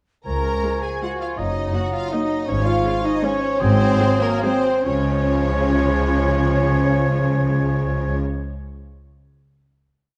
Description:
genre	classical, orchestral ballroom waltz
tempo	134-176 BPM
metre	3/4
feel	rubato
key	Db major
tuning	A4 = 438 Hz
part	warm French horn section	sustained chords	0.2-8.2 s	Bb3 to Bb4	-28 LUFS	equal	none
part	warm studio violin section	melody	0.3-8.2 s	Bb3 to Bb4	-30 LUFS	equal	none
part	concert flute	second line	0.3-8.2 s	Db6 to Eb6	-34 LUFS	equal	none
part	mellow clarinet	second line	0.3-8.2 s	Bb4 to Bb5	-33 LUFS	equal	none
part	rich studio violin section	second line	0.3-8.2 s	Bb4 to Bb5	-32 LUFS	equal	none
part	warm oboe	second line	0.3-8.2 s	Ab5 to Bb5	-34 LUFS	equal	none
part	mellow bassoon	accompaniment	0.3-8.2 s	F3 to Gb3	-30 LUFS	equal	none
part	warm studio cello section	bass	0.3-8.2 s	Db2 to Db3	-28 LUFS	equal	none
part	warm studio double bass section	bass	0.3-8.2 s	Gb1 to Db2	-26 LUFS	equal	none
part	rich studio viola section	accompaniment	0.6-8.2 s	F3 to F4	-31 LUFS	equal	none
room	moderate scoring stage reverb, RT60 1.5 s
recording	dark, warm production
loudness	-20 LUFS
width	mono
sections	0.3-4.9 A section; 4.9-7.4 final chord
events	slowing down 1.9-4.9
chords	0.3 Db; 1.4 Ebm/Gb; 2.5 Db/Ab; 3.6 Ab7; 4.9 Db

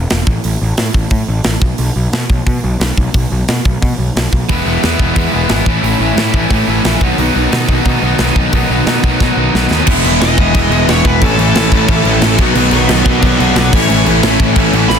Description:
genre	punk rock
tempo	178 BPM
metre	4/4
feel	straight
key	B mixolydian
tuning	A4 = 440 Hz
part	fuzz picked electric bass	bass	0.0-15.0 s	E1 to B2	-16 LUFS	equal	overdrive
part	tight metal drum kit	drums	0.1-15.0 s	crash cymbal, hi-hat, kick drum, snare drum	-15 LUFS	equal	none
part	distorted electric guitar	riff	4.5-15.0 s	A2 to E4	-16 LUFS	left 16 dB	distortion
part	distorted electric guitar	riff	4.5-15.0 s	A2 to F#4	-16 LUFS	right 16 dB	distortion
part	high-gain distorted guitar	riff	9.9-15.0 s	A2 to E4	-17 LUFS	equal	distortion
part	dark smooth lead guitar	melody	10.2-15.0 s	A4 to B5	-18 LUFS	right 1 dB	overdrive
room	little or no reverb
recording	dense, heavily limited modern master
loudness	-10 LUFS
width	side -7 dB against mid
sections	0.0-9.9 A section; 9.9-15.0 B section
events	drum fill 9.2-9.9; lead electric guitar solo 9.9-15.0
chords	0.0 N.C.; 4.5 E; 5.7 A; 7.0 B; 9.9 E; 11.2 A; 12.4 B; 13.7 A

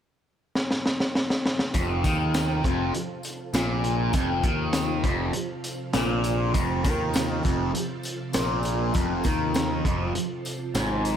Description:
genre	psychedelic rock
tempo	100 BPM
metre	4/4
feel	straight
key	unclear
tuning	A4 = 440 Hz
part	crunchy breakbeat drum kit	drums	0.6-11.2 s	hi-hat, kick drum, snare drum	-27 LUFS	equal	none
part	ensemble organ-string	sustained chords	1.7-11.2 s	C3 to A4	-35 LUFS	right 3 dB	ensemble chorus
part	fuzz guitar	riff	1.7-11.2 s	F2 to Eb3	-27 LUFS	equal	distortion, phaser
part	fuzz picked electric bass	bass	1.7-11.2 s	F1 to Eb2	-29 LUFS	equal	overdrive
part	tambourine	percussion	1.7-11.2 s	none	-42 LUFS	left 5 dB	none
room	light reverb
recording	none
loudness	-23 LUFS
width	side -9 dB against mid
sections	0.0-1.7 A section; 1.7-11.2 B section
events	drum fill 0.5-1.7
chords	0.0 N.C.; 1.7 F

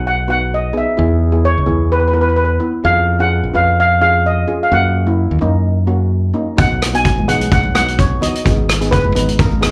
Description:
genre	calypso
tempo	128 BPM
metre	4/4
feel	swing 53% on 16ths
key	B major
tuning	A4 = 440 Hz
part	steel pan	melody	0.0-9.7 s	A#4 to G#5	-19 LUFS	equal	slapback echo
part	steel pan	accompaniment	0.0-9.7 s	A#3 to B4	-23 LUFS	equal	slapback echo
part	modern bright fingered electric bass	bass	0.0-9.7 s	F#1 to F#2	-18 LUFS	equal	none
part	street-band drum kit	drums	6.6-9.7 s	hi-hat, kick drum, rim click	-18 LUFS	equal	none
part	congas	percussion	7.2-9.7 s	none	-26 LUFS	equal	none
room	moderate club reverb, RT60 0.5 s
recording	live gig heard through the venue's PA, club reverb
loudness	-15 LUFS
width	mono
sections	0.0-9.7 A section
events	none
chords	0.0 B; 1.0 E; 2.8 C#; 4.7 F#; 6.6 B; 8.4 G#madd9

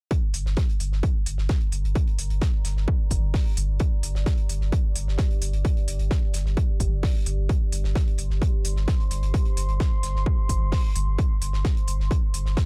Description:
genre	driving peak-time techno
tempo	130 BPM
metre	4/4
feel	straight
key	G minor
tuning	A4 = 440 Hz
part	damped 70s drum kit	drums	0.1-12.7 s	hi-hat, snare drum	-44 LUFS	equal	sidechain pumping on hats, high-pass filter on hats, high-pass filter on snare, high-pass filter on room
part	electronic kick drum	drums	0.1-12.7 s	none	-26 LUFS	equal	none
part	deep dark ambient pad	texture	1.9-12.7 s	G4 to C6	-41 LUFS	equal	chorus, built-in reverb, sidechain pumping
part	saturated sub bass	bass	0.3-12.6 s	G1	-27 LUFS	equal	tube saturation, sidechain pumping, low-pass filter
part	electronic hi-hat	drums	0.3-12.4 s	none	-35 LUFS	equal	sidechain pumping on hats
room	little or no reverb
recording	dry, gritty hardware recording, transformer saturation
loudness	-24 LUFS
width	mono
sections	0.1-12.7 A section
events	fade-in on ambient pad 0.1-12.7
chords	0.1 Gm

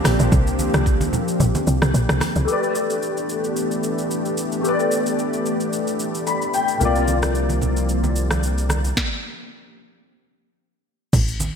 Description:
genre	amapiano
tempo	111 BPM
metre	4/4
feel	swing 55% on 16ths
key	unclear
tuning	A4 = 439 Hz
part	lush unison pad	sustained chords	0.0-8.9 s	E3 to G4	-24 LUFS	equal	chorus, sidechain pumping
part	congas	percussion	0.0-2.5, 6.8-11.5 s	none	-27 LUFS	right 3 dB	none
part	tight log drum bass	bass	0.1-2.5, 11.1-11.5 s	A1 to C2	-19 LUFS	equal	none
part	afro-pop drum kit	drums	0.1-11.5 s	crash cymbal, hi-hat, kick drum, rim click, shaker, snare drum	-25 LUFS	equal	none
part	dark grand piano	accompaniment	2.4-9.0 s	C3 to B5	-23 LUFS	left 4 dB	ensemble chorus
part	saturated sub bass	bass	6.8-8.9 s	C2	-21 LUFS	equal	none
room	moderate lush hall reverb, RT60 1.6 s, digital ambience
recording	bright 1980s-style digital production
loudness	-18 LUFS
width	side -7 dB against mid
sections	0.0-2.5 A section; 2.5-11.1 B section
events	drop 0.0-2.5; kick muted 1.4-2.5; grand piano fill 6.0-6.8; stop 9.0-11.1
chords	0.0 C9sus4; 2.5 A9sus4; 6.8 C9sus4

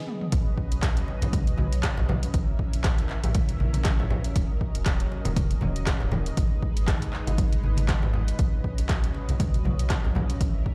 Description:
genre	afro house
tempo	119 BPM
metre	4/4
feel	swing 56% on 16ths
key	unclear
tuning	A4 = 441 Hz
part	warm analog pad	sustained chords	0.0-10.7 s	D#3 to E5	-39 LUFS	equal	chorus, sidechain pumping
part	deep house drum kit	drums	0.1-10.5 s	handclaps, hi-hat, rim click, toms	-35 LUFS	equal	overdrive
part	warm sub bass	bass	0.3-10.5 s	D#1 to B1	-29 LUFS	equal	tube saturation, sidechain pumping
part	electronic kick drum	drums	0.3-10.7 s	none	-28 LUFS	equal	overdrive
part	congas	percussion	0.3-10.5 s	none	-34 LUFS	equal	none
room	digital ambience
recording	played on a big sound system in a bare room, large studio reverb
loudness	-26 LUFS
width	mono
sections	0.3-10.7 A section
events	break 0.0-0.3; drum fill 0.0-0.3; drop 0.3-10.7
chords	0.3 Badd9; 2.3 A#dim; 4.4 D#m7; 6.4 G#m; 8.4 Badd9

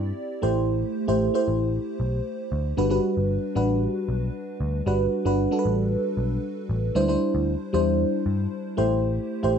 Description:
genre	1980s-style pop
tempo	115 BPM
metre	4/4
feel	straight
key	G major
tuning	A4 = 440 Hz
part	FM electric piano with soft pad layer	accompaniment	0.0-9.6 s	G3 to D5	-24 LUFS	equal	chorus, phaser, plate reverb
part	vintage muted picked electric bass	bass	0.0-9.6 s	G1 to G2	-26 LUFS	equal	none
room	moderate studio reverb, RT60 0.6 s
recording	dark, warm production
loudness	-22 LUFS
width	side -7 dB against mid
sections	0.0-9.6 A section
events	none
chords	0.4 Am7; 2.8 Gmaj7; 7.0 D9sus4; 8.8 Am7

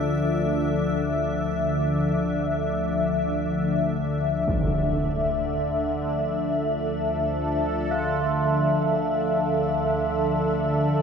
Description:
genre	dark ambient drone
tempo	free time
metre	none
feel	none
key	D minor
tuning	A4 = 440 Hz
part	sweeping resonant pad	sustained chords	0.0-11.0 s	D3 to E5	-24 LUFS	left 1 dB	chorus
part	organ-like drone	drone	0.0-11.0 s	D2 to D3	-27 LUFS	equal	ensemble chorus, built-in reverb
part	icy glass pad	texture	0.0-11.0 s	D5 to E5	-45 LUFS	left 2 dB	chorus, built-in reverb
part	impact	percussion	4.5-4.7 s	none	-29 LUFS	equal	low-pass filter on sfx
part	tubular bells	arpeggios	7.9-11.0 s	F4	-30 LUFS	right 2 dB	ping-pong delay
room	wet lush hall reverb, RT60 2.6 s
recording	dreamy mix soaked in reverb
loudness	-22 LUFS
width	side -6 dB against mid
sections	0.0-4.5 A section; 4.5-11.0 B section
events	fade-out on ambient pad 0.0-4.5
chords	0.0 Dmadd9

